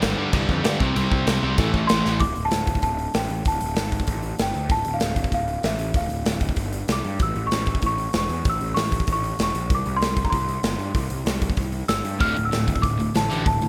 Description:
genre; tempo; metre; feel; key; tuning
punk rock; 192 BPM; 4/4; straight; D minor; A4 = 440 Hz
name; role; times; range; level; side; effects
cranked stack guitar; riff; 0.0-2.2, 12.2-13.7 s; D2 to C4; -30 LUFS; equal; overdrive
crunchy overdriven guitar; riff; 0.0-2.2, 12.2-13.7 s; D2 to C4; -29 LUFS; equal; none
fuzz guitar; riff; 0.0-2.2 s; G2 to C4; -30 LUFS; equal; none
fuzz picked electric bass; bass; 0.0-13.7 s; D1 to G2; -29 LUFS; equal; overdrive
big rock drum kit; drums; 0.0-13.7 s; crash cymbal, hi-hat, kick drum, snare drum; -27 LUFS; equal; none
worn celesta; melody; 1.9-13.7 s; E5 to F6; -29 LUFS; equal; tape echo
room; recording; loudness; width
little or no reverb; none; -23 LUFS; mono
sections
0.0-2.2 A section; 2.2-13.7 B section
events
drum fill 2.1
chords
0.0 G5; 0.8 C5; 1.6 Am; 2.2 D5; 4.1 N.C.; 4.4 G5; 4.7 Dm; 6.6 N.C.; 6.9 C5; 7.2 A; 9.7 C5; 12.2 D5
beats
0.03 0.34 0.65 | 0.96 1.27 1.59 1.90 | 2.21 2.52 2.83 3.15 | 3.46 3.77 4.08 4.39 | 4.71 5.02 5.33 5.64 | 5.96 6.27 6.58 6.89 | 7.20 7.52 7.83 8.14 | 8.45 8.77 9.08 9.39 | 9.70 10.02 10.33 10.64 | 10.95 11.27 11.58 11.89 | 12.21 12.52 12.83 13.14 | 13.46

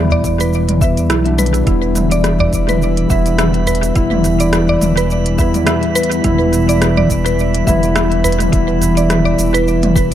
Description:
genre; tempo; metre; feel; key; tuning
organic downtempo; 105 BPM; 4/4; swing 56% on 16ths; E minor; A4 = 440 Hz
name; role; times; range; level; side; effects
tine electric piano; accompaniment; 0.0-10.1 s; G3 to E4; -19 LUFS; left 3 dB; fast stereo tremolo, vintage 12-bit sampler grit, sidechain pumping, tape echo
warm analog pad; sustained chords; 0.0-10.1 s; E3; -20 LUFS; right 1 dB; chorus, sidechain pumping
smooth synth bass; bass; 0.0-10.1 s; E1 to E2; -17 LUFS; equal; none
mallet-like synth pluck; arpeggios; 0.1-10.1 s; E4 to E5; -19 LUFS; right 1 dB; chorus, tape echo
udu; percussion; 0.1-9.4 s; none; -23 LUFS; left 1 dB; none
electronic kick drum; drums; 0.2-10.1 s; none; -17 LUFS; equal; overdrive
organic electronic drum kit; drums; 0.2-10.1 s; cabasa, hi-hat, rim click, toms; -20 LUFS; equal; overdrive, tape echo
drifting glass-harmonics texture; texture; 2.4-10.1 s; E4 to E5; -27 LUFS; right 7 dB; chorus, built-in reverb
room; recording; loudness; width
light reverb; echo-heavy mix; -12 LUFS; side -11 dB against mid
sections
0.0-10.1 A section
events
none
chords
0.0 Em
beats
0.53 1.10 | 1.67 2.24 2.81 3.38 | 3.95 4.53 5.10 5.67 | 6.24 6.81 7.38 7.95 | 8.53 9.10 9.67

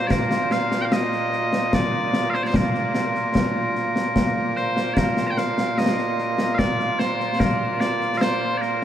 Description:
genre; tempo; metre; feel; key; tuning
scottish traditional, Scottish pipe music; 74 BPM; 3/4; straight; Bb major; A4 = 440 Hz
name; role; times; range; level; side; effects
loud bright bagpipes; melody; 0.0-8.8 s; Bb2 to Bb5; -22 LUFS; right 1 dB; none
concert snare drum and concert bass drum; drums; 0.1-8.7 s; none; -23 LUFS; left 1 dB; none
room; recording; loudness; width
wet huge ambient reverb, RT60 7.9 s; heard from further back in the room; -19 LUFS; side -10 dB against mid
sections
0.0-5.0 A section; 5.0-8.8 A section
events
none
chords
none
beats
| 0.11 0.92 1.73 | 2.54 3.35 4.16 | 4.97 5.78 6.59 | 7.40 8.21

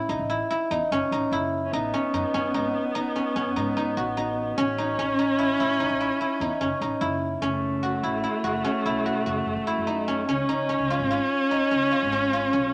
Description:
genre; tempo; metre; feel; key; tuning
contemporary instrumental, chamber music in an uneven meter; 147 BPM; 7/4; straight; unclear; A4 = 440 Hz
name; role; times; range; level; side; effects
guzheng; arpeggios; 0.0-12.7 s; C#4 to F#4; -28 LUFS; equal; none
upright bass; bass; 0.0-12.7 s; F#1 to A2; -37 LUFS; equal; none
rich viola; second line; 1.7-12.7 s; A3 to C#4; -29 LUFS; equal; none
room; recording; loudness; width
moderate plate reverb, RT60 2.5 s; none; -25 LUFS; mono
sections
0.0-7.4 A section; 7.4-12.7 B section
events
none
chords
0.0 A; 1.7 Badd9; 4.6 A; 7.4 F#m7; 10.3 C#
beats
0.09 0.50 0.91 1.32 | 1.73 2.13 2.54 2.95 3.36 3.76 4.17 | 4.58 4.98 5.39 5.80 6.21 6.61 7.02 | 7.43 7.84 8.24 8.65 9.06 9.47 9.88 | 10.28 10.69 11.10 11.51 11.91 12.32 12.73

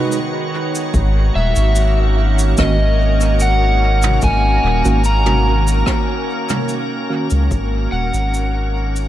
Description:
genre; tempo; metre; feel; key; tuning
ambient dub; 73 BPM; 4/4; straight; unclear; A4 = 441 Hz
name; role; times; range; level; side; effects
soft additive organ-like pad; sustained chords; 0.0-9.1 s; D#3 to C#5; -21 LUFS; right 1 dB; ensemble chorus, built-in reverb
tine electric piano; stabs; 0.0-7.3 s; D#3 to B4; -25 LUFS; right 4 dB; dub echo
jazz brush drum kit; drums; 0.1-9.1 s; cabasa, rim click, toms; -26 LUFS; equal; dub echo
soft dub sub bass; bass; 0.9-9.1 s; D#1 to C#2; -15 LUFS; equal; tube saturation
electronic kick drum; drums; 0.9-7.7 s; none; -21 LUFS; equal; none
overdriven slide guitar; melody; 1.4-9.1 s; D#5 to A#5; -21 LUFS; equal; vintage 12-bit sampler grit, dub echo
room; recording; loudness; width
light reverb, small room ambience; none; -14 LUFS; side -13 dB against mid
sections
0.0-9.1 A section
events
fade-out 5.3-9.1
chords
0.0 G#m7; 0.9 D#m7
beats
0.12 | 0.94 1.76 2.58 3.40 | 4.23 5.05 5.87 6.69 | 7.51 8.34

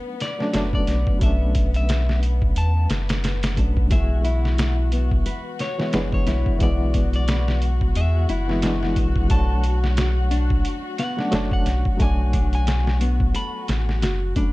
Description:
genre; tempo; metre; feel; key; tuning
trip hop; 89 BPM; 4/4; swing 57% on 16ths; B dorian; A4 = 439 Hz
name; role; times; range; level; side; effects
bright reed electric piano; accompaniment; 0.0-14.5 s; E3 to C#5; -28 LUFS; equal; fast tremolo
dark studio string section; sustained chords; 0.0-14.5 s; B3 to F#4; -34 LUFS; left 5 dB; vintage 12-bit sampler grit
electric guitar at the edge of break-up; melody; 0.2-13.7 s; C#5 to B5; -32 LUFS; left 1 dB; vintage 12-bit sampler grit, tape echo
trip hop sampler-style drum kit; drums; 0.2-14.5 s; hi-hat, kick drum, snare drum; -23 LUFS; equal; studio reverb
warm sub bass; bass; 0.5-14.5 s; F#1 to E2; -21 LUFS; equal; none
nylon-string guitar; arpeggios; 3.9-14.5 s; B3 to B4; -31 LUFS; left 3 dB; digital delay
room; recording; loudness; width
little or no reverb; dark, warm production; -19 LUFS; side -20 dB against mid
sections
0.0-14.5 A section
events
none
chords
0.0 Bm7; 3.9 E; 9.3 Bm7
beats
0.54 | 1.21 1.89 2.56 3.23 | 3.91 4.58 5.26 5.93 | 6.61 7.28 7.95 8.63 | 9.30 9.98 10.65 11.32 | 12.00 12.67 13.35 14.02

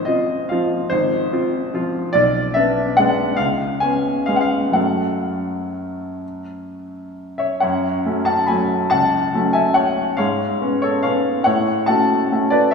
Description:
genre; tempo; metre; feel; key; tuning
classical, piano waltz; 120-154 BPM; 3/4; rubato; F# minor; A4 = 439 Hz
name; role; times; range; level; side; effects
clear baby grand piano; solo; 0.0-12.7 s; Ab1 to B5; -17 LUFS; left 1 dB; none
room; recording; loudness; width
wet concert hall reverb, RT60 2.3 s; recorded in a church or concert hall; -16 LUFS; side -5 dB against mid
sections
0.0-7.6 A section; 7.6-12.7 B section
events
none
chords
0.0 Fm/Ab; 2.2 G#dim/B; 3.4 C#7; 4.8 F#m; 10.2 C#7/G#; 11.5 F#m/A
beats
0.08 0.51 | 0.92 1.33 1.74 | 2.15 2.56 2.98 | 3.39 3.82 4.28 | 4.76 5.24 5.74 | 6.22 6.69 7.17 | 7.63 8.06 8.50 | 8.93 9.34 9.77 | 10.19 10.62 11.05 | 11.47 11.89 12.32 | 12.74

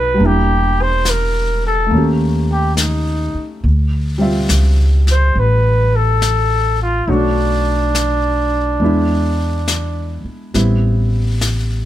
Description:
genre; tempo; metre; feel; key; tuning
jazz ballad; 70 BPM; 4/4; swing 66% on 8ths; unclear; A4 = 440 Hz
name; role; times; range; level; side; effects
growling trumpet; melody; 0.0-10.3 s; D4 to C5; -18 LUFS; equal; none
warm baby grand piano; accompaniment; 0.0-11.9 s; B2 to E5; -20 LUFS; equal; none
upright bass; bass; 0.0-11.9 s; E1 to E2; -16 LUFS; equal; none
jazz brush drum kit; drums; 0.2-11.9 s; brushed snare drum, hi-hat, snare drum; -24 LUFS; left 3 dB; none
room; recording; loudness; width
little or no reverb; none; -13 LUFS; side -13 dB against mid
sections
0.0-11.9 A section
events
none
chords
0.2 Em7b5; 1.9 Eb7#11; 3.6 Dm11; 7.1 Bm9; 8.8 E7; 10.5 Am9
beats
| 0.20 1.06 1.92 2.78 | 3.64 4.50 5.36 6.22 | 7.08 7.94 8.81 9.67 | 10.54 11.41

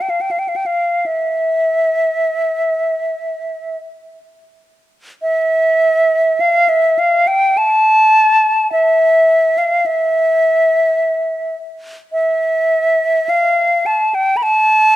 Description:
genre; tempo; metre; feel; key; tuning
classical, free, expressive piece for unaccompanied flute; 37-55 BPM; 3/4; rubato; unclear; A4 = 435 Hz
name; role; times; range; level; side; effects
hollow concert flute; solo; 0.0-15.0 s; E5 to B5; -12 LUFS; equal; none
room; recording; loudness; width
moderate concert hall reverb, RT60 2.3 s; close, detailed microphones; -12 LUFS; side -14 dB against mid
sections
0.0-5.2 A section; 5.2-15.0 A section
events
none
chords
none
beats
| 1.06 2.42 3.78 | 5.23 6.40 7.56 | 8.70 9.83 10.98 | 12.12 13.28 14.41

